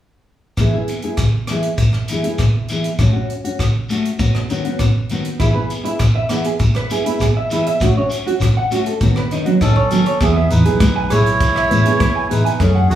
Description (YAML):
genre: highlife guitar band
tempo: 100 BPM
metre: 4/4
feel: straight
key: E major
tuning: A4 = 440 Hz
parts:
  - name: nylon-string guitar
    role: accompaniment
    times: 0.6-12.8 s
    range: D#3 to G#4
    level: -22 LUFS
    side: left 2 dB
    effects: none
  - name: tight funk drum kit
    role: drums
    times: 0.6-13.0 s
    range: hi-hat, kick drum, rim click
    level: -22 LUFS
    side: equal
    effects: none
  - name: shekere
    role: percussion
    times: 0.6-13.0 s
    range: none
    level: -19 LUFS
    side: left 1 dB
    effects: none
  - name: electric guitar at the edge of break-up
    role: arpeggios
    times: 5.4-12.8 s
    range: F#3 to G#5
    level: -20 LUFS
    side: right 3 dB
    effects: none
  - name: melodica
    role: melody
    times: 9.6-13.0 s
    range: A3 to C#5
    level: -19 LUFS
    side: right 1 dB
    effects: none
  - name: fingered electric bass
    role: bass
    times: 10.2-13.0 s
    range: B1 to F#2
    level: -16 LUFS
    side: right 1 dB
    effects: none
  - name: congas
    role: percussion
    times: 10.2-12.7 s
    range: none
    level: -21 LUFS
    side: equal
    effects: none
room: wet large studio reverb, RT60 1.1 s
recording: band playing live in one room, small room reverb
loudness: -14 LUFS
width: side -11 dB against mid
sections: 0.6-10.2 A section; 10.2-13.0 B section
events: none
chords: 0.6 E; 3.0 F#m; 4.2 Badd9; 5.4 E; 7.8 F#m; 9.0 Badd9; 10.2 E